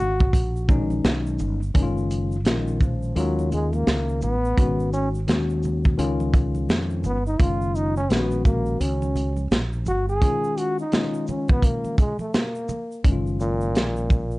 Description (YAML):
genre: hip hop, jazz-hop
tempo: 85 BPM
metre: 4/4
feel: swing 60% on 16ths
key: F# major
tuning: A4 = 439 Hz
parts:
  - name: breathy trombone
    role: melody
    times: 0.0-14.4 s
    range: A#2 to G#4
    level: -26 LUFS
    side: equal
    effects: plate reverb
  - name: tine electric piano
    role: accompaniment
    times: 0.0-14.3 s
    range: D#3 to E#5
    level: -27 LUFS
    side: left 3 dB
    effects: none
  - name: mellow fretless electric bass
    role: bass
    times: 0.0-14.4 s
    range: F#1 to E#2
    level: -25 LUFS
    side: equal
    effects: none
  - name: congas and tube shaker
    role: percussion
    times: 0.0-14.4 s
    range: none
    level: -36 LUFS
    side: right 3 dB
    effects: none
  - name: crunchy breakbeat drum kit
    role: drums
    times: 0.2-14.3 s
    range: hi-hat, kick drum, shaker, snare drum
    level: -21 LUFS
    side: equal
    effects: none
room: light reverb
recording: dark, warm production, nothing above 10.4 kHz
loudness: -20 LUFS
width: side -20 dB against mid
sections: 0.0-1.8 A section; 1.8-13.0 B section; 13.0-14.4 C section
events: trombone solo 1.8-13.0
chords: 0.0 F#; 1.8 F#maj7; 3.2 F#maj13; 4.6 G#5; 6.0 C#add9; 7.4 F#maj7